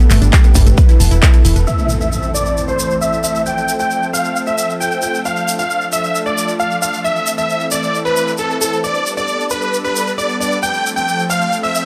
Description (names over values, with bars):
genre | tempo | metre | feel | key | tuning
uplifting trance | 134 BPM | 4/4 | straight | A minor | A4 = 439 Hz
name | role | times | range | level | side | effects
unison pluck | arpeggios | 0.0-1.6 s | G3 to A5 | -27 LUFS | equal | sidechain pumping, digital delay
tube shaker | percussion | 0.0-11.8 s | none | -27 LUFS | equal | none
solid FM bass | bass | 0.1-1.7 s | E1 to G1 | -14 LUFS | equal | sidechain pumping
big-room dance drum kit | drums | 0.1-1.6 s | handclaps, hi-hat | -22 LUFS | equal | overdrive, sidechain pumping on hats
electronic kick drum | drums | 0.3-1.3 s | none | -11 LUFS | equal | overdrive
big supersaw lead | melody | 1.7-11.9 s | A4 to G5 | -20 LUFS | equal | sidechain pumping, low-pass filter, digital delay
dark baby grand piano | second line | 1.7-11.9 s | A4 to G5 | -27 LUFS | equal | sidechain pumping, low-pass filter, digital delay
impact | sound effects | 1.7-3.5 s | none | -24 LUFS | equal | none
room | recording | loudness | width
light reverb | none | -15 LUFS | mono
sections
0.0-1.7 A section; 1.7-11.9 B section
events
impact 1.7-3.5; filter sweep on supersaw synth 1.7-11.9; filter sweep on grand piano 1.7-11.9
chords
0.0 Gadd9; 0.8 Esus4; 1.7 Am; 3.5 F; 5.3 Dm; 7.0 Am; 8.8 Gadd9; 10.6 F